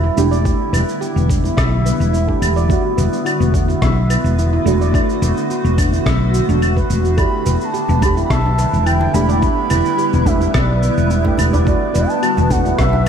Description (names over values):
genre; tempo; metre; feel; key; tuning
organic downtempo; 107 BPM; 4/4; straight; E minor; A4 = 441 Hz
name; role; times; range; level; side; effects
deep mellow chord stab; accompaniment; 0.0-13.1 s; A3 to G4; -23 LUFS; right 3 dB; chorus, phaser, sidechain pumping, analog delay
granular cloud pad; sustained chords; 0.0-13.1 s; D3 to F#4; -22 LUFS; equal; built-in reverb, lush chorus, sidechain pumping
handpan; arpeggios; 0.0-12.9 s; B3 to E5; -22 LUFS; right 1 dB; analog delay
woody fretless electric bass; bass; 0.0-13.1 s; E1 to B1; -16 LUFS; equal; sidechain pumping
electronic cabasa, claves and rim click; drums; 0.2-13.1 s; none; -26 LUFS; equal; overdrive
electronic kick drum; drums; 0.5-12.9 s; none; -19 LUFS; equal; overdrive
breathy bass bansuri; melody; 7.2-13.1 s; D5 to B5; -21 LUFS; equal; vintage 12-bit sampler grit, ping-pong delay
wind-like tuned noise texture; texture; 8.0-13.1 s; B4; -28 LUFS; right 4 dB; built-in reverb, lush chorus
djembe; percussion; 7.5-13.1 s; none; -25 LUFS; right 1 dB; none
room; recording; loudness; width
moderate lush hall reverb, RT60 2.4 s; dreamy mix soaked in reverb; -13 LUFS; side -8 dB against mid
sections
0.0-13.1 A section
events
none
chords
0.0 Em7; 2.7 D6/E; 7.2 Em7; 11.7 D6/E